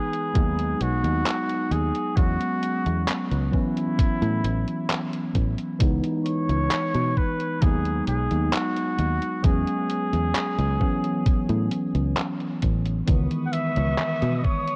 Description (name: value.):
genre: vaporwave.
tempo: 66 BPM.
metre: 4/4.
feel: straight.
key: C# minor.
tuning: A4 = 440 Hz.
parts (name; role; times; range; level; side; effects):
clear flugelhorn; melody; 0.0-14.8 s; E4 to F#5; -32 LUFS; equal; tape echo.
mellow tine electric piano; accompaniment; 0.0-14.8 s; D#3 to D#4; -29 LUFS; equal; lush chorus.
detuned 8-bit digital drum machine; drums; 0.1-14.8 s; handclaps, hi-hat; -33 LUFS; equal; none.
fingered electric bass; bass; 0.4-14.4 s; A1 to B2; -27 LUFS; equal; none.
electronic kick drum; drums; 0.4-14.6 s; none; -24 LUFS; equal; none.
muted studio string section; sustained chords; 13.1-14.8 s; B4 to D#6; -40 LUFS; equal; none.
room: light reverb, digital ambience.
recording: worn, warbling old tape, cassette tape, warbly pitch drift.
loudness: -24 LUFS.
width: mono.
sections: 0.0-14.8 A section.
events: none.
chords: 0.4 G#m7; 2.2 E6; 3.5 A69; 5.8 C#m9; 7.6 G#m7; 9.4 E6; 10.8 A69; 13.1 C#m9.